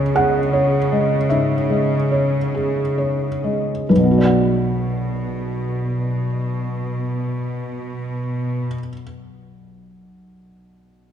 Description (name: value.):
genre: cinematic, emotional film score for orchestra.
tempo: 44-54 BPM.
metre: 4/4.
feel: rubato.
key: B dorian.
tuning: A4 = 440 Hz.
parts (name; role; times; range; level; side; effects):
felt-muted upright piano; accompaniment; 0.0-11.1 s; B1 to G#5; -19 LUFS; equal; none.
rich chamber cello section; bass; 0.0-8.7 s; B2 to C#3; -22 LUFS; right 1 dB; none.
room: moderate scoring stage reverb, RT60 1.9 s.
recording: dark, warm production.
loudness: -18 LUFS.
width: side -9 dB against mid.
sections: 0.0-3.9 A section; 3.9-9.3 B section.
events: slowing down 0.0-3.9.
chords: 0.0 C#m; 3.9 Bm.